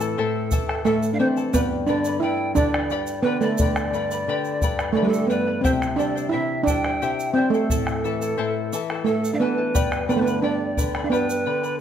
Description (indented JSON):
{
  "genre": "andean folk, Andean ensemble",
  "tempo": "88 BPM",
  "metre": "3/4",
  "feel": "straight",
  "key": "unclear",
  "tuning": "A4 = 437 Hz",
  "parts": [
    { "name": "steel pan", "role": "melody", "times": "0.0-11.8 s", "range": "G3 to E4", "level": "-23 LUFS", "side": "right 3 dB", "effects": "none" },
    { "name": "breathy bright large pan pipes", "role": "second line", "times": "0.0-11.8 s", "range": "A4 to G5", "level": "-28 LUFS", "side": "right 2 dB", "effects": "none" },
    { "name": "charango", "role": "accompaniment", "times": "0.0-11.8 s", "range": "E4 to B5", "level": "-30 LUFS", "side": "left 6 dB", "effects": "none" },
    { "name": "nylon-string guitar", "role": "accompaniment", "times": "0.0-11.8 s", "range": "G2 to G3", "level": "-29 LUFS", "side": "left 9 dB", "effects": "none" },
    { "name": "egg shaker", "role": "percussion", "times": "0.0-11.7 s", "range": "none", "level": "-36 LUFS", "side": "right 4 dB", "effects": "none" },
    { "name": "bombo", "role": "percussion", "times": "0.2-11.1 s", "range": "none", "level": "-26 LUFS", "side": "equal", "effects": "none" }
  ],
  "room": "light reverb",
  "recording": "close, detailed microphones",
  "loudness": "-20 LUFS",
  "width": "side -9 dB against mid",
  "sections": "0.0-11.8 A section",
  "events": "none",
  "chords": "0.0 Am; 1.5 G; 5.6 C; 7.7 Am; 9.8 G"
}